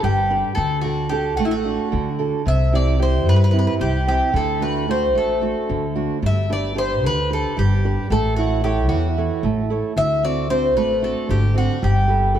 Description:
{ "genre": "greek folk", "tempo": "224 BPM (eighths)", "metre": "7/8", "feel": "straight", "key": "unclear", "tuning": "A4 = 436 Hz", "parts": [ { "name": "Greek bouzouki", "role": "melody", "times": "0.0-12.4 s", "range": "E4 to E5", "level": "-22 LUFS", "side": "left 1 dB", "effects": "none" }, { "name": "fingerpicked steel-string acoustic guitar", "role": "accompaniment", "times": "0.0-12.4 s", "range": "C3 to C#5", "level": "-23 LUFS", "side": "right 5 dB", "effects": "none" }, { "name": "upright bass", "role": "bass", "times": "0.0-12.4 s", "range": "G1 to G2", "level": "-21 LUFS", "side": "left 1 dB", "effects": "none" } ], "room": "moderate plate reverb, RT60 2.7 s", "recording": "heard from further back in the room", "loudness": "-17 LUFS", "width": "side -10 dB against mid", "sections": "0.0-12.4 A section", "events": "none", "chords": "0.0 G; 0.6 D; 2.5 C; 4.3 D; 6.2 G; 8.1 A; 10.0 D7; 11.8 Gadd9" }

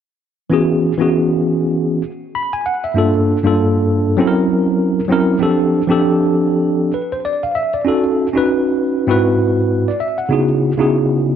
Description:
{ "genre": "hip hop", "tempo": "98 BPM", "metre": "4/4", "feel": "swing 59% on 16ths", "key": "unclear", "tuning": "A4 = 437 Hz", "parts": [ { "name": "tine electric piano", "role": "solo", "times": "0.5-11.4 s", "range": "G2 to B5", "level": "-14 LUFS", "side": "equal", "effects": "medium stereo tremolo, slapback echo" } ], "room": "moderate plate reverb, RT60 2.9 s", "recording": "none", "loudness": "-14 LUFS", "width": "side -8 dB against mid", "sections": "0.5-11.4 A section", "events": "none", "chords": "0.5 E69; 3.0 Gm7; 4.2 F#7#11; 5.4 F6; 7.9 D#m7b5; 9.1 G#7alt; 10.3 C#m11" }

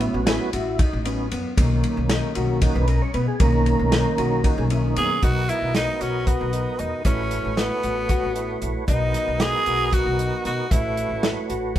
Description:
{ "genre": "progressive instrumental, band music in an uneven meter", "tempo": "230 BPM (eighths)", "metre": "7/8", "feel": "straight", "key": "B major", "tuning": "A4 = 440 Hz", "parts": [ { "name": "tonewheel organ", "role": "accompaniment", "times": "0.0-11.8 s", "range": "D#3 to D#5", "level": "-27 LUFS", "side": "right 3 dB", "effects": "chorus vibrato, stopped rotary speaker" }, { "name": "mellow electric guitar", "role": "arpeggios", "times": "0.0-11.8 s", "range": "A#3 to F#4", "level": "-30 LUFS", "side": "left 3 dB", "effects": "spring reverb" }, { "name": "upright bass", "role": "bass", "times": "0.0-11.7 s", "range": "A1 to B2", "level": "-25 LUFS", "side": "left 1 dB", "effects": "none" }, { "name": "warm soul drum kit", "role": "drums", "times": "0.0-11.8 s", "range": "hi-hat, kick drum, ride cymbal, snare drum", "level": "-23 LUFS", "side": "equal", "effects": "none" }, { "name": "raspy tenor saxophone", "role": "melody", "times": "5.0-11.3 s", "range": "B3 to G#4", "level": "-24 LUFS", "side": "equal", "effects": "none" } ], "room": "moderate stone room reverb, RT60 1.1 s", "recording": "band playing live in one room", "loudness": "-19 LUFS", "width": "side -12 dB against mid", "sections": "0.0-5.2 A section; 5.2-11.8 B section", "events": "tonewheel organ solo 0.0-5.2", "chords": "0.0 A69; 1.6 Bmaj7; 7.1 A69; 8.9 Bmaj7; 10.7 A69" }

